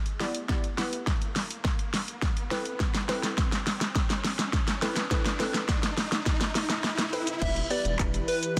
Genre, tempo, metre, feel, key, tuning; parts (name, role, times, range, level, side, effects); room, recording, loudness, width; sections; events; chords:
dance-pop; 104 BPM; 4/4; straight; E minor; A4 = 440 Hz
riser; sound effects; 0.0-7.4 s; -40 LUFS; equal
pop drum kit; drums; 0.1-8.6 s; crash cymbal, handclaps, hi-hat, kick drum, shaker, snare drum; -30 LUFS; equal
glassy wavetable pluck; accompaniment; 0.2-8.4 s; G3 to D5; -36 LUFS; equal; chorus, sidechain pumping
plucky unison lead; melody; 7.4-8.5 s; B4 to E5; -33 LUFS; equal; sidechain pumping
airy breathy pad; sustained chords; 7.4-8.6 s; E3 to B4; -36 LUFS; equal; chorus, sidechain pumping
saturated sub bass; bass; 7.4-8.2 s; E1; -34 LUFS; equal; sidechain pumping
light reverb; dense, heavily limited modern master; -28 LUFS; mono
0.0-7.4 A section; 7.4-8.6 B section
build-up 0.0-7.4; drum fill 0.0-7.4; riser 0.1-7.4; drop 7.4-8.6
0.0 Em; 2.5 Amadd9; 7.4 Em